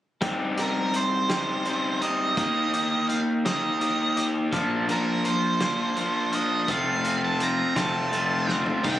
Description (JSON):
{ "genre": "indie rock", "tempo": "56 BPM (dotted quarters)", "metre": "6/8", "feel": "straight", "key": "C dorian", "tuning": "A4 = 440 Hz", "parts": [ { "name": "crunchy overdriven guitar", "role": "riff", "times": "0.2-9.0 s", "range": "F3 to G4", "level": "-25 LUFS", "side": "left 2 dB", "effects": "none" }, { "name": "loose indie drum kit", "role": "drums", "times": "0.2-9.0 s", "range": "crash cymbal, hi-hat, kick drum, snare drum, toms", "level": "-32 LUFS", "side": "right 1 dB", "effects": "none" }, { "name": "octave-fuzz lead guitar", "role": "melody", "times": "0.6-9.0 s", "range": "Bb4 to Bb5", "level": "-27 LUFS", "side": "right 3 dB", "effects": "distortion" }, { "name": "crunchy overdriven guitar", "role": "riff", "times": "4.5-9.0 s", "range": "Eb3 to D4", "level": "-32 LUFS", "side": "right 9 dB", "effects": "lush chorus, analog delay" }, { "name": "growling fingered electric bass", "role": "bass", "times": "4.5-9.0 s", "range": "F1 to C2", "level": "-33 LUFS", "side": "equal", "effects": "overdrive" } ], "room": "light reverb", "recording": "recorded on a phone in the room, studio ambience", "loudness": "-22 LUFS", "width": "side -13 dB against mid", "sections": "0.2-8.8 A section", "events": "drum fill 8.5-8.8", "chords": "0.2 Cm; 2.4 Eb; 4.5 Bb; 6.7 F", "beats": "| 0.21 1.29 | 2.37 3.45 | 4.53 5.61 | 6.69 7.77 | 8.84" }